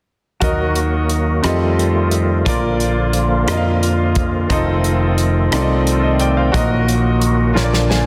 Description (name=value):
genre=slow gospel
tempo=59 BPM (dotted quarters)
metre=6/8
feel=straight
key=Eb harmonic minor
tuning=A4 = 439 Hz
part: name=bright upright piano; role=accompaniment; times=0.4-8.1 s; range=Bb2 to Ab5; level=-21 LUFS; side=equal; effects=none
part: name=bright tonewheel organ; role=sustained chords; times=0.4-8.1 s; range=D3 to Gb4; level=-23 LUFS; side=equal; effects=slow rotary speaker, chorus vibrato
part: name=fingered electric bass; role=bass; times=0.4-8.1 s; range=F1 to F2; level=-20 LUFS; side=equal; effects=none
part: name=natural country drum kit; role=drums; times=0.4-8.1 s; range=hi-hat, kick drum, rim click, snare drum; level=-24 LUFS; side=equal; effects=none
room=moderate concert hall reverb, RT60 1.9 s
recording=dense, heavily limited modern master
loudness=-16 LUFS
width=mono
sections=0.4-8.1 A section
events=drum fill 7.6-8.1; upright piano fill 7.6-8.1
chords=0.4 Ebm; 1.4 F9; 2.5 Bb; 4.5 F7; 6.5 Ebm/Bb; 7.6 Bb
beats=| 0.42 1.44 | 2.46 3.48 | 4.50 5.52 | 6.54 7.56